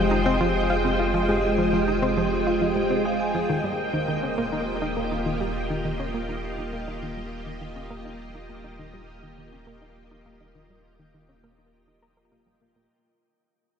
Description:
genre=ambient, sequencer-driven space music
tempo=102 BPM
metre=4/4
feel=straight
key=unclear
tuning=A4 = 440 Hz
part: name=string machine, full ensemble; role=sustained chords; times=0.0-12.9 s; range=Ab3 to G5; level=-27 LUFS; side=right 1 dB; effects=ensemble chorus
part: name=vibraphone with medium mallets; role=arpeggios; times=0.0-3.5 s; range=F4 to Ab5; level=-30 LUFS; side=left 2 dB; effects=auto-pan, ping-pong delay
part: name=analog pluck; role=riff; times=0.0-12.8 s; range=Eb3 to Bb4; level=-28 LUFS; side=equal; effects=chorus, ping-pong delay
part: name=round analog bass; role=bass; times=0.0-12.9 s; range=Eb1 to F1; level=-34 LUFS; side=equal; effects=none
part: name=wind-like tuned noise texture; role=texture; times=0.0-12.9 s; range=Eb5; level=-33 LUFS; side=right 3 dB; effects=built-in reverb
room=wet huge ambient reverb, RT60 8.2 s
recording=none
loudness=-22 LUFS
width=side -7 dB against mid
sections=0.0-12.9 A section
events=fade-out 0.0-12.9; filter sweep on synth arpeggio sound 0.0-12.9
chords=0.0 Fmadd9; 3.5 Ebadd9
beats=0.55 | 1.14 1.73 2.32 2.91 | 3.49 4.08 4.67 5.26 | 5.85 6.43 7.02 7.61 | 8.20 8.79 9.38 9.96 | 10.55 11.14 11.73 12.32

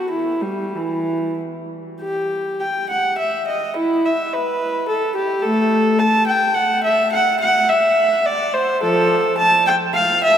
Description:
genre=classical, baroque-style suite movement for unaccompanied viola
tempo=92-109 BPM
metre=3/4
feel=rubato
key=E minor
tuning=A4 = 440 Hz
part: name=warm viola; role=solo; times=0.0-10.4 s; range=E3 to A5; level=-16 LUFS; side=equal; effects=none
room=wet cathedral reverb, RT60 5.9 s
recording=in a vast, echoing space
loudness=-16 LUFS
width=side -9 dB against mid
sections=0.0-2.0 A section; 2.0-10.4 B section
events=none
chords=none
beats=| 0.10 0.76 1.39 | 2.02 2.61 3.18 | 3.76 4.32 4.88 | 5.43 6.00 6.55 | 7.12 7.68 8.25 | 8.81 9.38 9.96

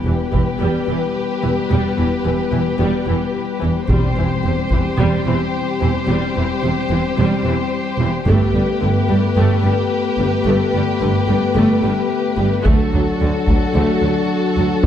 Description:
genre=cinematic, epic orchestral film score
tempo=110 BPM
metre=4/4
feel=straight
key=E minor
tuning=A4 = 440 Hz
part: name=rich studio violin section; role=melody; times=0.0-14.9 s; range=A4 to C5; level=-25 LUFS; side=left 4 dB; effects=none
part: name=warm symphonic violin section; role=second line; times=0.0-14.9 s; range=F#4 to G4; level=-25 LUFS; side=left 3 dB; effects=none
part: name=mellow French horn section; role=sustained chords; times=0.0-14.9 s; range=F#3 to D4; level=-22 LUFS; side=left 4 dB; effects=none
part: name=rich studio double bass section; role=bass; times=0.0-14.6 s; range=E1 to D2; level=-22 LUFS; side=right 2 dB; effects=none
part: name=rich symphonic viola section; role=accompaniment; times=0.1-14.9 s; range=C3 to A3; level=-24 LUFS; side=right 2 dB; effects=none
part: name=rich symphonic cello section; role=bass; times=0.1-14.9 s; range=D2 to G2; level=-22 LUFS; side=right 2 dB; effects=none
part: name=taiko ensemble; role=drums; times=0.3-0.6, 3.9-5.0, 8.3-9.3, 12.7-14.9 s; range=none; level=-19 LUFS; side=equal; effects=none
part: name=timpani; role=percussion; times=3.9-4.7 s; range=E2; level=-25 LUFS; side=left 1 dB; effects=none
room=moderate scoring stage reverb, RT60 2.0 s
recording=dark, warm production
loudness=-15 LUFS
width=side -10 dB against mid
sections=0.0-14.9 A section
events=build-up 0.0-14.9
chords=0.0 Em; 3.9 C/E; 8.3 Gadd9; 12.7 D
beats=0.05 0.60 1.15 | 1.70 2.24 2.79 3.34 | 3.89 4.43 4.98 5.53 | 6.08 6.63 7.17 7.72 | 8.27 8.82 9.37 9.92 | 10.46 11.01 11.56 12.11 | 12.66 13.21 13.75 14.30 | 14.85

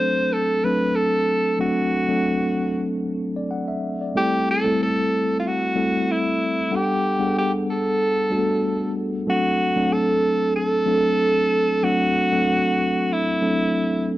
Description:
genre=soul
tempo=94 BPM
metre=4/4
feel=swing 54% on 16ths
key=unclear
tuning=A4 = 439 Hz
part: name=warm tenor saxophone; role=melody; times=0.0-14.1 s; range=E4 to C5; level=-21 LUFS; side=right 1 dB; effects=none
part: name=mellow tine electric piano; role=accompaniment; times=0.0-14.2 s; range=F#3 to F#5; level=-22 LUFS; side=equal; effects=medium stereo tremolo
room=light reverb, small room ambience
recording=none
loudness=-19 LUFS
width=side -16 dB against mid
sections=0.0-9.3 A section; 9.3-14.2 A section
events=none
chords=0.0 D7; 4.2 Am7; 6.7 Gmaj9; 9.3 D7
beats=0.32 0.96 | 1.60 2.24 2.88 3.52 | 4.16 4.80 5.44 6.08 | 6.72 7.36 7.99 8.63 | 9.27 9.91 10.55 11.19 | 11.83 12.47 13.11 13.75

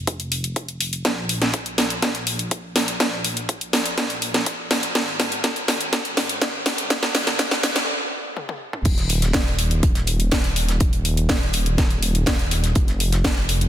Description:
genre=progressive house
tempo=123 BPM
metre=4/4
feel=straight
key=unclear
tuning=A4 = 440 Hz
part: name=dark detuned saw bass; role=bass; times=0.0-13.7 s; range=Eb1 to Bb1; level=-24 LUFS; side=equal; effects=sidechain pumping
part: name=electronic kick drum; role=drums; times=0.1-13.3 s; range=none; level=-22 LUFS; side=equal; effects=high-pass filter on kick, small room ambience
part: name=house drum kit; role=drums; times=0.1-13.7 s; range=crash cymbal, hi-hat, snare drum, toms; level=-21 LUFS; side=equal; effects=small room ambience
part: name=damped 70s drum kit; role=drums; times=8.9-13.6 s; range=hi-hat, snare drum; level=-34 LUFS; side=right 4 dB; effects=sidechain pumping on hats, high-pass filter on hats, small room ambience, high-pass filter on snare, high-pass filter on room
room=moderate lush hall reverb, RT60 2.0 s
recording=dense, heavily limited modern master, high-pass filter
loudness=-19 LUFS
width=side -11 dB against mid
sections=0.0-8.9 A section; 8.9-13.7 B section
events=build-up 0.0-8.9; drum fill 1.1-7.9, 8.4-8.9; stop 7.9-8.9; drop 8.9-13.7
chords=none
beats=0.07 0.56 | 1.05 1.54 2.03 2.51 | 3.00 3.49 3.98 4.46 | 4.95 5.44 5.93 6.42 | 6.90 7.39 7.88 8.37 | 8.86 9.34 9.83 10.32 | 10.81 11.29 11.78 12.27 | 12.76 13.24

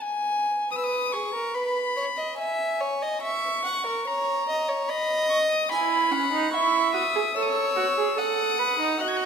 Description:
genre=classical, baroque-style fugue for string quartet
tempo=72 BPM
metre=3/4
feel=straight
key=E major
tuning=A4 = 440 Hz
part: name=warm violin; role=melody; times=0.0-9.3 s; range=G#5 to G#6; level=-26 LUFS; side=left 3 dB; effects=none
part: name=warm violin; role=second line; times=0.7-9.3 s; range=G#4 to G#5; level=-27 LUFS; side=equal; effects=none
part: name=rich viola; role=accompaniment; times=5.7-9.3 s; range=C#4 to B4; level=-25 LUFS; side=right 8 dB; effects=none
room=wet recital hall reverb, RT60 1.5 s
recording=none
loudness=-22 LUFS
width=side -6 dB against mid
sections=0.0-9.3 A section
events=none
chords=0.0 N.C.; 0.7 B; 2.4 E; 3.2 F#7 (rootless); 4.9 B/D#; 5.7 E; 7.4 A; 8.2 B7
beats=| 0.72 1.55 2.40 | 3.23 4.07 4.89 | 5.71 6.53 7.36 | 8.18 9.01

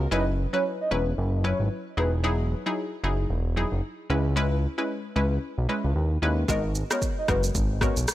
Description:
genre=afrobeats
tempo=113 BPM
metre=4/4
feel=swing 58% on 16ths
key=unclear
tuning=A4 = 440 Hz
part: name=analog pluck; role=accompaniment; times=0.0-8.0 s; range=F#3 to B4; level=-29 LUFS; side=left 1 dB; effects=chorus
part: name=fat analog bass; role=bass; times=0.0-8.1 s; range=E1 to D#2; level=-25 LUFS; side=equal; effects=none
part: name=soft octave-layered synth lead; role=melody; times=0.1-2.1, 6.5-8.0 s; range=B4 to D#5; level=-31 LUFS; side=equal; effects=chorus, phaser, ping-pong delay
part: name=afro-pop drum kit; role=drums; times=6.5-8.1 s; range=kick drum, rim click, shaker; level=-27 LUFS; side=equal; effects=none
room=digital ambience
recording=none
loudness=-24 LUFS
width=side -14 dB against mid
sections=0.0-8.1 A section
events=none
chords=0.1 F#7sus4; 2.0 Emaj9; 4.1 C#m7; 6.5 G#m9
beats=| 0.12 0.65 1.18 1.71 | 2.24 2.77 3.30 3.83 | 4.36 4.89 5.42 5.96 | 6.49 7.02 7.55 8.08

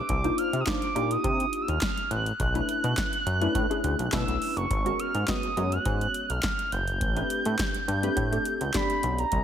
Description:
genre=early-eighties boogie funk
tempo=104 BPM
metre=4/4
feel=straight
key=unclear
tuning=A4 = 440 Hz
part: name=expressive synth lead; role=melody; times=0.0-9.4 s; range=A#5 to G6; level=-29 LUFS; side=right 2 dB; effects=chorus, slapback echo
part: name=funky polysynth comp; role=accompaniment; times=0.0-9.3 s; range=G#3 to D5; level=-30 LUFS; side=left 2 dB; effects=chorus, slapback echo
part: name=chorused synth bass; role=bass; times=0.1-9.4 s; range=F#1 to C3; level=-28 LUFS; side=equal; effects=none
part: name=electro analog drum machine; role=drums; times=0.1-9.4 s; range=handclaps, hi-hat, kick drum, snare drum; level=-31 LUFS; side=equal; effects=none
room=moderate lush hall reverb, RT60 1.6 s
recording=big arena sound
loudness=-24 LUFS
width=side -9 dB against mid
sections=0.0-9.4 A section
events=none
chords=0.1 Cm11; 2.4 Bm11; 4.7 G#m11; 7.0 Am11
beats=| 0.09 0.67 1.25 1.82 | 2.40 2.98 3.55 4.13 | 4.71 5.28 5.86 6.44 | 7.01 7.59 8.17 8.74 | 9.32

